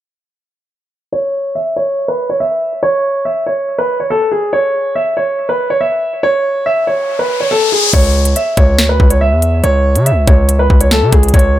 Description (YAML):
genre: hip hop, drill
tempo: 141 BPM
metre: 4/4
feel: half-time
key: C# phrygian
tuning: A4 = 439 Hz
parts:
  - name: dark grand piano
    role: melody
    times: 1.1-11.6 s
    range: G#4 to E5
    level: -13 LUFS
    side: equal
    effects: low-pass filter, ping-pong delay
  - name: riser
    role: sound effects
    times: 7.1-7.9 s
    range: none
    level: -17 LUFS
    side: left 3 dB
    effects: none
  - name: distorted 808-style bass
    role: bass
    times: 7.9-11.6 s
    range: C#2 to C#3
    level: -12 LUFS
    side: equal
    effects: distortion
  - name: drill drum kit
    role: drums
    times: 7.9-11.4 s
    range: crash cymbal, hi-hat, kick drum, snare drum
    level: -11 LUFS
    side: equal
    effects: none
room: light reverb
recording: none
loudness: -11 LUFS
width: side -13 dB against mid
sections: 1.1-7.9 A section; 7.9-11.6 B section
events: filter sweep on grand piano 1.1-7.9; riser 7.1-7.9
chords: 1.1 N.C.; 7.9 C#m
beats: | 1.13 1.55 1.98 2.40 | 2.83 3.25 3.68 4.10 | 4.53 4.96 5.38 5.81 | 6.23 6.66 7.08 7.51 | 7.93 8.36 8.79 9.21 | 9.64 10.06 10.49 10.91 | 11.34